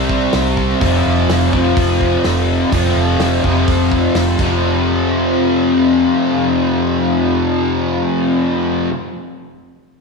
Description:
rock, shoegaze and dream pop; 125 BPM; 4/4; straight; A4 = 440 Hz
fuzz guitar; riff; 0.0-8.9 s; F2 to C4; -14 LUFS; left 1 dB; distortion, analog chorus
vintage muted picked electric bass; bass; 0.0-8.9 s; F1 to C2; -19 LUFS; right 2 dB
loose indie drum kit; drums; 0.1-4.5 s; crash cymbal, hi-hat, kick drum, snare drum; -22 LUFS; equal
wet lush hall reverb, RT60 1.7 s, small room ambience; dreamy mix soaked in reverb; -13 LUFS; side -4 dB against mid
0.0-4.6 A section; 4.6-8.5 B section
0.0 C5; 0.8 F5

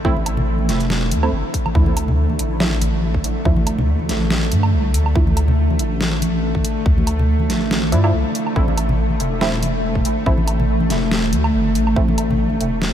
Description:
deep dubstep; 141 BPM; 4/4; swing 55% on 16ths, half-time; A4 = 443 Hz
bowed-like drone; sustained chords; 0.0-12.9 s; D3 to A3; -22 LUFS; equal; built-in reverb
filtered dub chord stab; stabs; 0.0-5.2, 7.9-12.1 s; F3 to E4; -26 LUFS; right 2 dB; chorus, dub echo
deep soft wobble bass; bass; 0.0-12.9 s; E1 to G2; -19 LUFS; equal; chorus
electronic kick drum; drums; 0.0-12.1 s; -19 LUFS; equal; overdrive
congas; percussion; 0.2-12.6 s; -28 LUFS; left 1 dB
dubstep drum kit; drums; 0.3-12.9 s; hi-hat, snare drum, woodblock; -26 LUFS; equal; overdrive
moderate huge ambient reverb, RT60 8.3 s; dreamy mix soaked in reverb; -16 LUFS; side -10 dB against mid
0.0-12.9 A section
0.0 Am; 1.8 Dmadd9; 8.6 Am

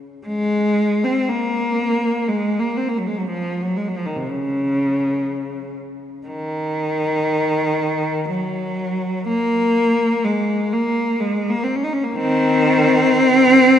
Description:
classical, free, expressive piece for unaccompanied cello; 61 BPM; 3/4; uneven beats, rubato; A4 = 440 Hz
clear cello; solo; 0.3-13.8 s; C3 to Eb4; -16 LUFS; equal
wet church reverb, RT60 3.5 s; nothing above 11.0 kHz; -17 LUFS; side -9 dB against mid
0.3-13.8 A section

